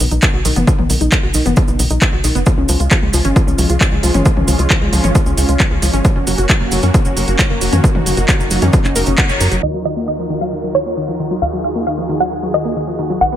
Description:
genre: uplifting trance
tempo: 134 BPM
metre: 4/4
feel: straight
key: unclear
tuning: A4 = 440 Hz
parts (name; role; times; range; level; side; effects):
- wide unison pluck; arpeggios; 0.0-13.4 s; D#3 to F#5; -20 LUFS; left 2 dB; sidechain pumping, ping-pong delay
- tight sequencer bass; bass; 0.0-13.4 s; F#1 to F#2; -18 LUFS; equal; sidechain pumping
- punchy analog drum machine; drums; 0.0-13.3 s; handclaps, hi-hat, toms; -19 LUFS; equal; sidechain pumping on hats, sidechain pumping on toms
- cabasa; percussion; 0.0-13.3 s; none; -25 LUFS; right 4 dB; none
- electronic kick drum; drums; 0.2-9.3 s; none; -14 LUFS; equal; overdrive
- filtered supersaw swell; sustained chords; 2.5-13.4 s; D#3 to B4; -23 LUFS; right 1 dB; phaser, sidechain pumping
- wide unison pluck; melody; 9.6-13.4 s; C#5 to F#5; -19 LUFS; right 1 dB; cassette tape, sidechain pumping, tape echo
- downlifter; sound effects; 9.9-13.2 s; none; -43 LUFS; equal; none
room: light reverb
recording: low-pass filter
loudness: -12 LUFS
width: side -11 dB against mid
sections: 0.0-9.6 A section; 9.6-13.4 B section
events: filter sweep on synth arpeggio sound 0.0-9.6, 9.6-13.4; band accent 9.2; filter sweep 9.6-13.4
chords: 0.0 B; 2.5 C#; 6.0 F#; 9.6 D#madd9

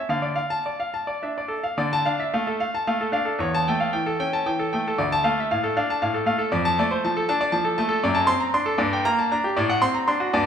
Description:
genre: classical, baroque-style suite movement for grand piano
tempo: 68-81 BPM (dotted quarters)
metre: 6/8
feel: rubato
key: D minor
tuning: A4 = 438 Hz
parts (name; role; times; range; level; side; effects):
- bright grand piano; solo; 0.0-10.5 s; D2 to C6; -21 LUFS; equal; none
room: moderate scoring stage reverb, RT60 1.8 s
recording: none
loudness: -21 LUFS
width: side -8 dB against mid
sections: 0.0-1.8 A section; 1.8-10.5 B section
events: none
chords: 0.1 Dm; 3.4 A7/E; 5.0 Dm; 6.5 Dm/F; 8.0 D7/F#; 8.8 Gm; 9.6 D7/A

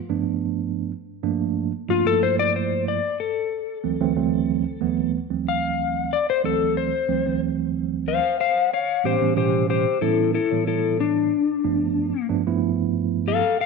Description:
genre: blues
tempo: 92 BPM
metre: 4/4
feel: straight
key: unclear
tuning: A4 = 443 Hz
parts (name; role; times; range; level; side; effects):
- mellow tine electric piano; accompaniment; 0.1-13.4 s; D2 to C#5; -23 LUFS; right 10 dB; medium stereo tremolo
- clean lap steel guitar; melody; 1.9-13.7 s; D4 to F5; -22 LUFS; left 8 dB; slapback echo
room: wet echo chamber reverb, RT60 1.8 s, digital ambience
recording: 1960s-style stereo with parts hard left and right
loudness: -20 LUFS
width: side -4 dB against mid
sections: 0.0-13.7 A section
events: none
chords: 0.0 G9; 0.9 Gm7; 3.5 D9; 8.7 A9; 11.3 G9

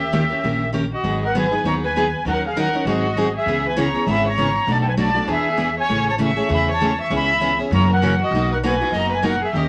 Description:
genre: acoustic string swing (jazz manouche)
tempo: 198 BPM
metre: 4/4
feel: swing 58% on 8ths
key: G# minor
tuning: A4 = 443 Hz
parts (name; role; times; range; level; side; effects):
- accordion; melody; 0.0-9.7 s; D#5 to C#6; -25 LUFS; equal; light tremolo tuning
- warm violin; second line; 0.0-9.7 s; F#4 to E5; -27 LUFS; equal; none
- picked steel-string acoustic guitar; accompaniment; 0.0-9.7 s; B2 to A#4; -24 LUFS; equal; none
- upright bass; bass; 0.0-9.7 s; F#1 to F#2; -27 LUFS; equal; none
room: wet club reverb, RT60 0.5 s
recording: none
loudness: -20 LUFS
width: mono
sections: 0.0-1.0 A section; 1.0-9.7 B section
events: none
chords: 0.0 D#7b9; 1.0 G#m7; 2.3 D#m7; 2.9 G#7; 3.5 C#m7; 4.7 Bm7; 5.3 E7; 5.9 Amaj7; 7.1 C#m7; 7.7 F#7; 8.3 Bmaj7

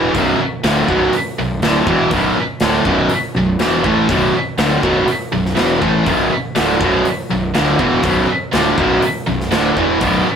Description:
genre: hard rock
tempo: 122 BPM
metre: 4/4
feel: straight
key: B minor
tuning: A4 = 440 Hz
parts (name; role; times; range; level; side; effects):
- heavy high-gain guitar; riff; 0.0-10.3 s; B1 to A3; -18 LUFS; equal; distortion
- overdriven semi-hollow guitar; riff; 0.0-10.3 s; B1 to A3; -16 LUFS; right 1 dB; none
- fuzz fingered electric bass; bass; 0.0-10.3 s; B0 to A1; -24 LUFS; equal; overdrive
- big rock drum kit; drums; 0.1-10.1 s; hi-hat, kick drum, snare drum; -21 LUFS; equal; none
room: moderate studio reverb, RT60 0.6 s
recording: rough rehearsal-room recording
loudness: -13 LUFS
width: side -7 dB against mid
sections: 0.0-10.4 A section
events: none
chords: 0.0 Bm

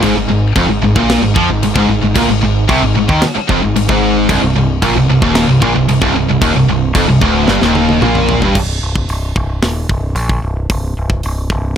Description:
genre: heavy metal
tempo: 112 BPM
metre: 4/4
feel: straight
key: C minor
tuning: A4 = 438 Hz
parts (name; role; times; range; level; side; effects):
- distorted electric guitar; riff; 0.0-8.6 s; C2 to F3; -16 LUFS; left 10 dB; distortion
- heavy high-gain guitar; riff; 0.0-8.5 s; C2 to F3; -17 LUFS; equal; distortion
- high-gain distorted guitar; riff; 0.0-8.6 s; C2 to F3; -15 LUFS; right 7 dB; distortion
- growling picked electric bass; bass; 0.0-11.7 s; C1 to F2; -17 LUFS; equal; overdrive
- tight metal drum kit; drums; 0.0-11.6 s; crash cymbal, hi-hat, kick drum, snare drum, toms; -18 LUFS; equal; none
room: little or no reverb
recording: none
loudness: -10 LUFS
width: side -8 dB against mid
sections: 0.0-8.6 A section; 8.6-11.8 B section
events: drum fill 7.5-8.6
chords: 0.0 Ab5; 4.3 Cm; 8.6 N.C.

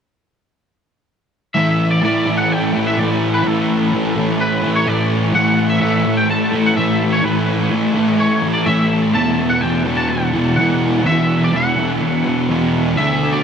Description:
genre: rock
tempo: 126 BPM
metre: 4/4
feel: straight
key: unclear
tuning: A4 = 442 Hz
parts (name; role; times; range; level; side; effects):
- twangy electric guitar; melody; 1.5-13.4 s; A4 to A5; -20 LUFS; equal; ensemble chorus, diffuse ambient delay
- fuzz guitar; riff; 1.5-13.4 s; E2 to D4; -15 LUFS; equal; distortion, lush chorus
room: wet huge ambient reverb, RT60 5.0 s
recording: dreamy mix soaked in reverb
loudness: -14 LUFS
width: side -7 dB against mid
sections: 1.6-13.4 A section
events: none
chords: 1.6 A5; 9.1 Esus2

